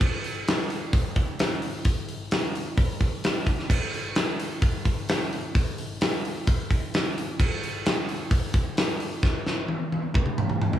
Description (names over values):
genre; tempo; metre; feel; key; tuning
rock; 130 BPM; 4/4; straight; none; none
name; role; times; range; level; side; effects
big rock drum kit; drums; 0.0-10.8 s; crash cymbal, hi-hat, kick drum, snare drum, toms; -23 LUFS; equal; none
room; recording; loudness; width
light reverb; studio ambience; -24 LUFS; side -11 dB against mid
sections
0.0-10.8 A section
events
drum fill 9.2-10.8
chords
none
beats
| 0.01 0.47 0.94 1.40 | 1.86 2.32 2.78 3.24 | 3.71 4.17 4.63 5.09 | 5.55 6.01 6.47 6.93 | 7.39 7.86 8.32 8.78 | 9.24 9.70 10.16 10.62